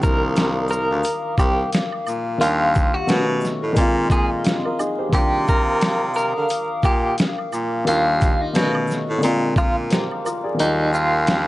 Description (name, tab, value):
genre	lo-fi hip hop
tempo	88 BPM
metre	4/4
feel	swing 58% on 16ths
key	Eb major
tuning	A4 = 437 Hz
part	clean electric guitar	melody	0.0-11.4 s	Eb4 to Bb4	-22 LUFS	right 1 dB	tremolo, low-pass filter
part	warm upright piano	accompaniment	0.0-11.5 s	D3 to D5	-24 LUFS	left 1 dB	low-pass filter
part	warbly tape-like pad	sustained chords	0.0-11.5 s	G4 to Eb6	-29 LUFS	left 3 dB	chorus, built-in reverb, low-pass filter
part	clear baritone saxophone	bass	0.0-11.5 s	C2 to D3	-22 LUFS	equal	none
part	boom bap sampler-style drum kit	drums	0.0-11.5 s	hi-hat, kick drum, shaker, snare drum	-21 LUFS	equal	none
part	egg shaker and woodblock	percussion	0.0-11.5 s	none	-36 LUFS	right 2 dB	none
room	small room ambience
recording	dry, gritty hardware recording, vinyl crackle, nothing above 11.0 kHz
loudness	-17 LUFS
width	side -18 dB against mid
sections	0.0-10.6 A section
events	kick muted 10.6-11.5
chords	0.0 Cm11; 2.4 Ebmaj9; 3.1 B9; 3.8 Bb9sus4; 5.1 Cm11; 7.9 Ebmaj9; 8.5 B9; 9.2 Bb7; 10.6 Ebmaj7